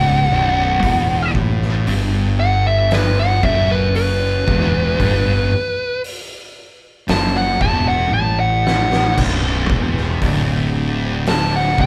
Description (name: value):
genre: stoner and doom metal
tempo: 58 BPM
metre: 4/4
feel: straight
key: unclear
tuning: A4 = 440 Hz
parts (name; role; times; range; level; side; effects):
- fuzz lead guitar; melody; 0.0-11.9 s; B4 to A5; -21 LUFS; equal; distortion
- thick fuzz guitar; riff; 0.0-11.9 s; B1 to A2; -26 LUFS; equal; none
- thick fuzz guitar; riff; 0.0-11.9 s; B1 to A2; -23 LUFS; equal; distortion
- fuzz fingered electric bass; bass; 0.0-11.9 s; B0 to A1; -24 LUFS; equal; overdrive
- oversized low-tuned drum kit; drums; 0.8-11.9 s; crash cymbal, hi-hat, kick drum, snare drum, toms; -24 LUFS; equal; none
room: moderate large studio reverb, RT60 0.8 s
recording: band playing live in one room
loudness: -17 LUFS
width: mono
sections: 0.0-11.9 A section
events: lead electric guitar solo 0.0-11.9; drum fill 8.1-9.2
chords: 0.0 B5; 0.8 E5; 9.2 Bm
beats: | 0.83 1.88 2.92 3.96 | 5.01 6.05 7.09 8.13 | 9.18 10.22 11.26